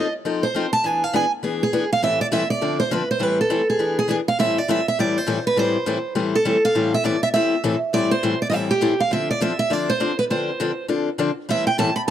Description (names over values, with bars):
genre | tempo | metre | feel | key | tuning
jazz | 203 BPM | 4/4 | swing 60% on 8ths | A minor | A4 = 440 Hz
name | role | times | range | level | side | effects
picked steel-string acoustic guitar | melody | 0.0-12.1 s | G4 to B5 | -20 LUFS | right 3 dB | none
picked steel-string acoustic guitar | accompaniment | 0.0-12.1 s | A2 to A4 | -23 LUFS | left 4 dB | none
room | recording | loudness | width
little or no reverb | dry, close 1970s-style studio recording | -18 LUFS | side -10 dB against mid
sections
0.0-4.4 A section; 4.4-12.1 A section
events
none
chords
0.0 F7; 0.8 E7; 2.0 Am7; 2.6 Dm7; 3.2 Am7; 3.8 E7; 4.4 Am7; 9.1 Dm7; 11.5 Am7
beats
0.24 0.54 | 0.84 1.13 1.43 1.72 | 2.02 2.31 2.61 2.90 | 3.20 3.50 3.79 4.09 | 4.38 4.68 4.97 5.27 | 5.57 5.86 6.16 6.45 | 6.75 7.04 7.34 7.63 | 7.93 8.22 8.52 8.82 | 9.11 9.41 9.71 10.00 | 10.30 10.59 10.89 11.19 | 11.48 11.78 12.07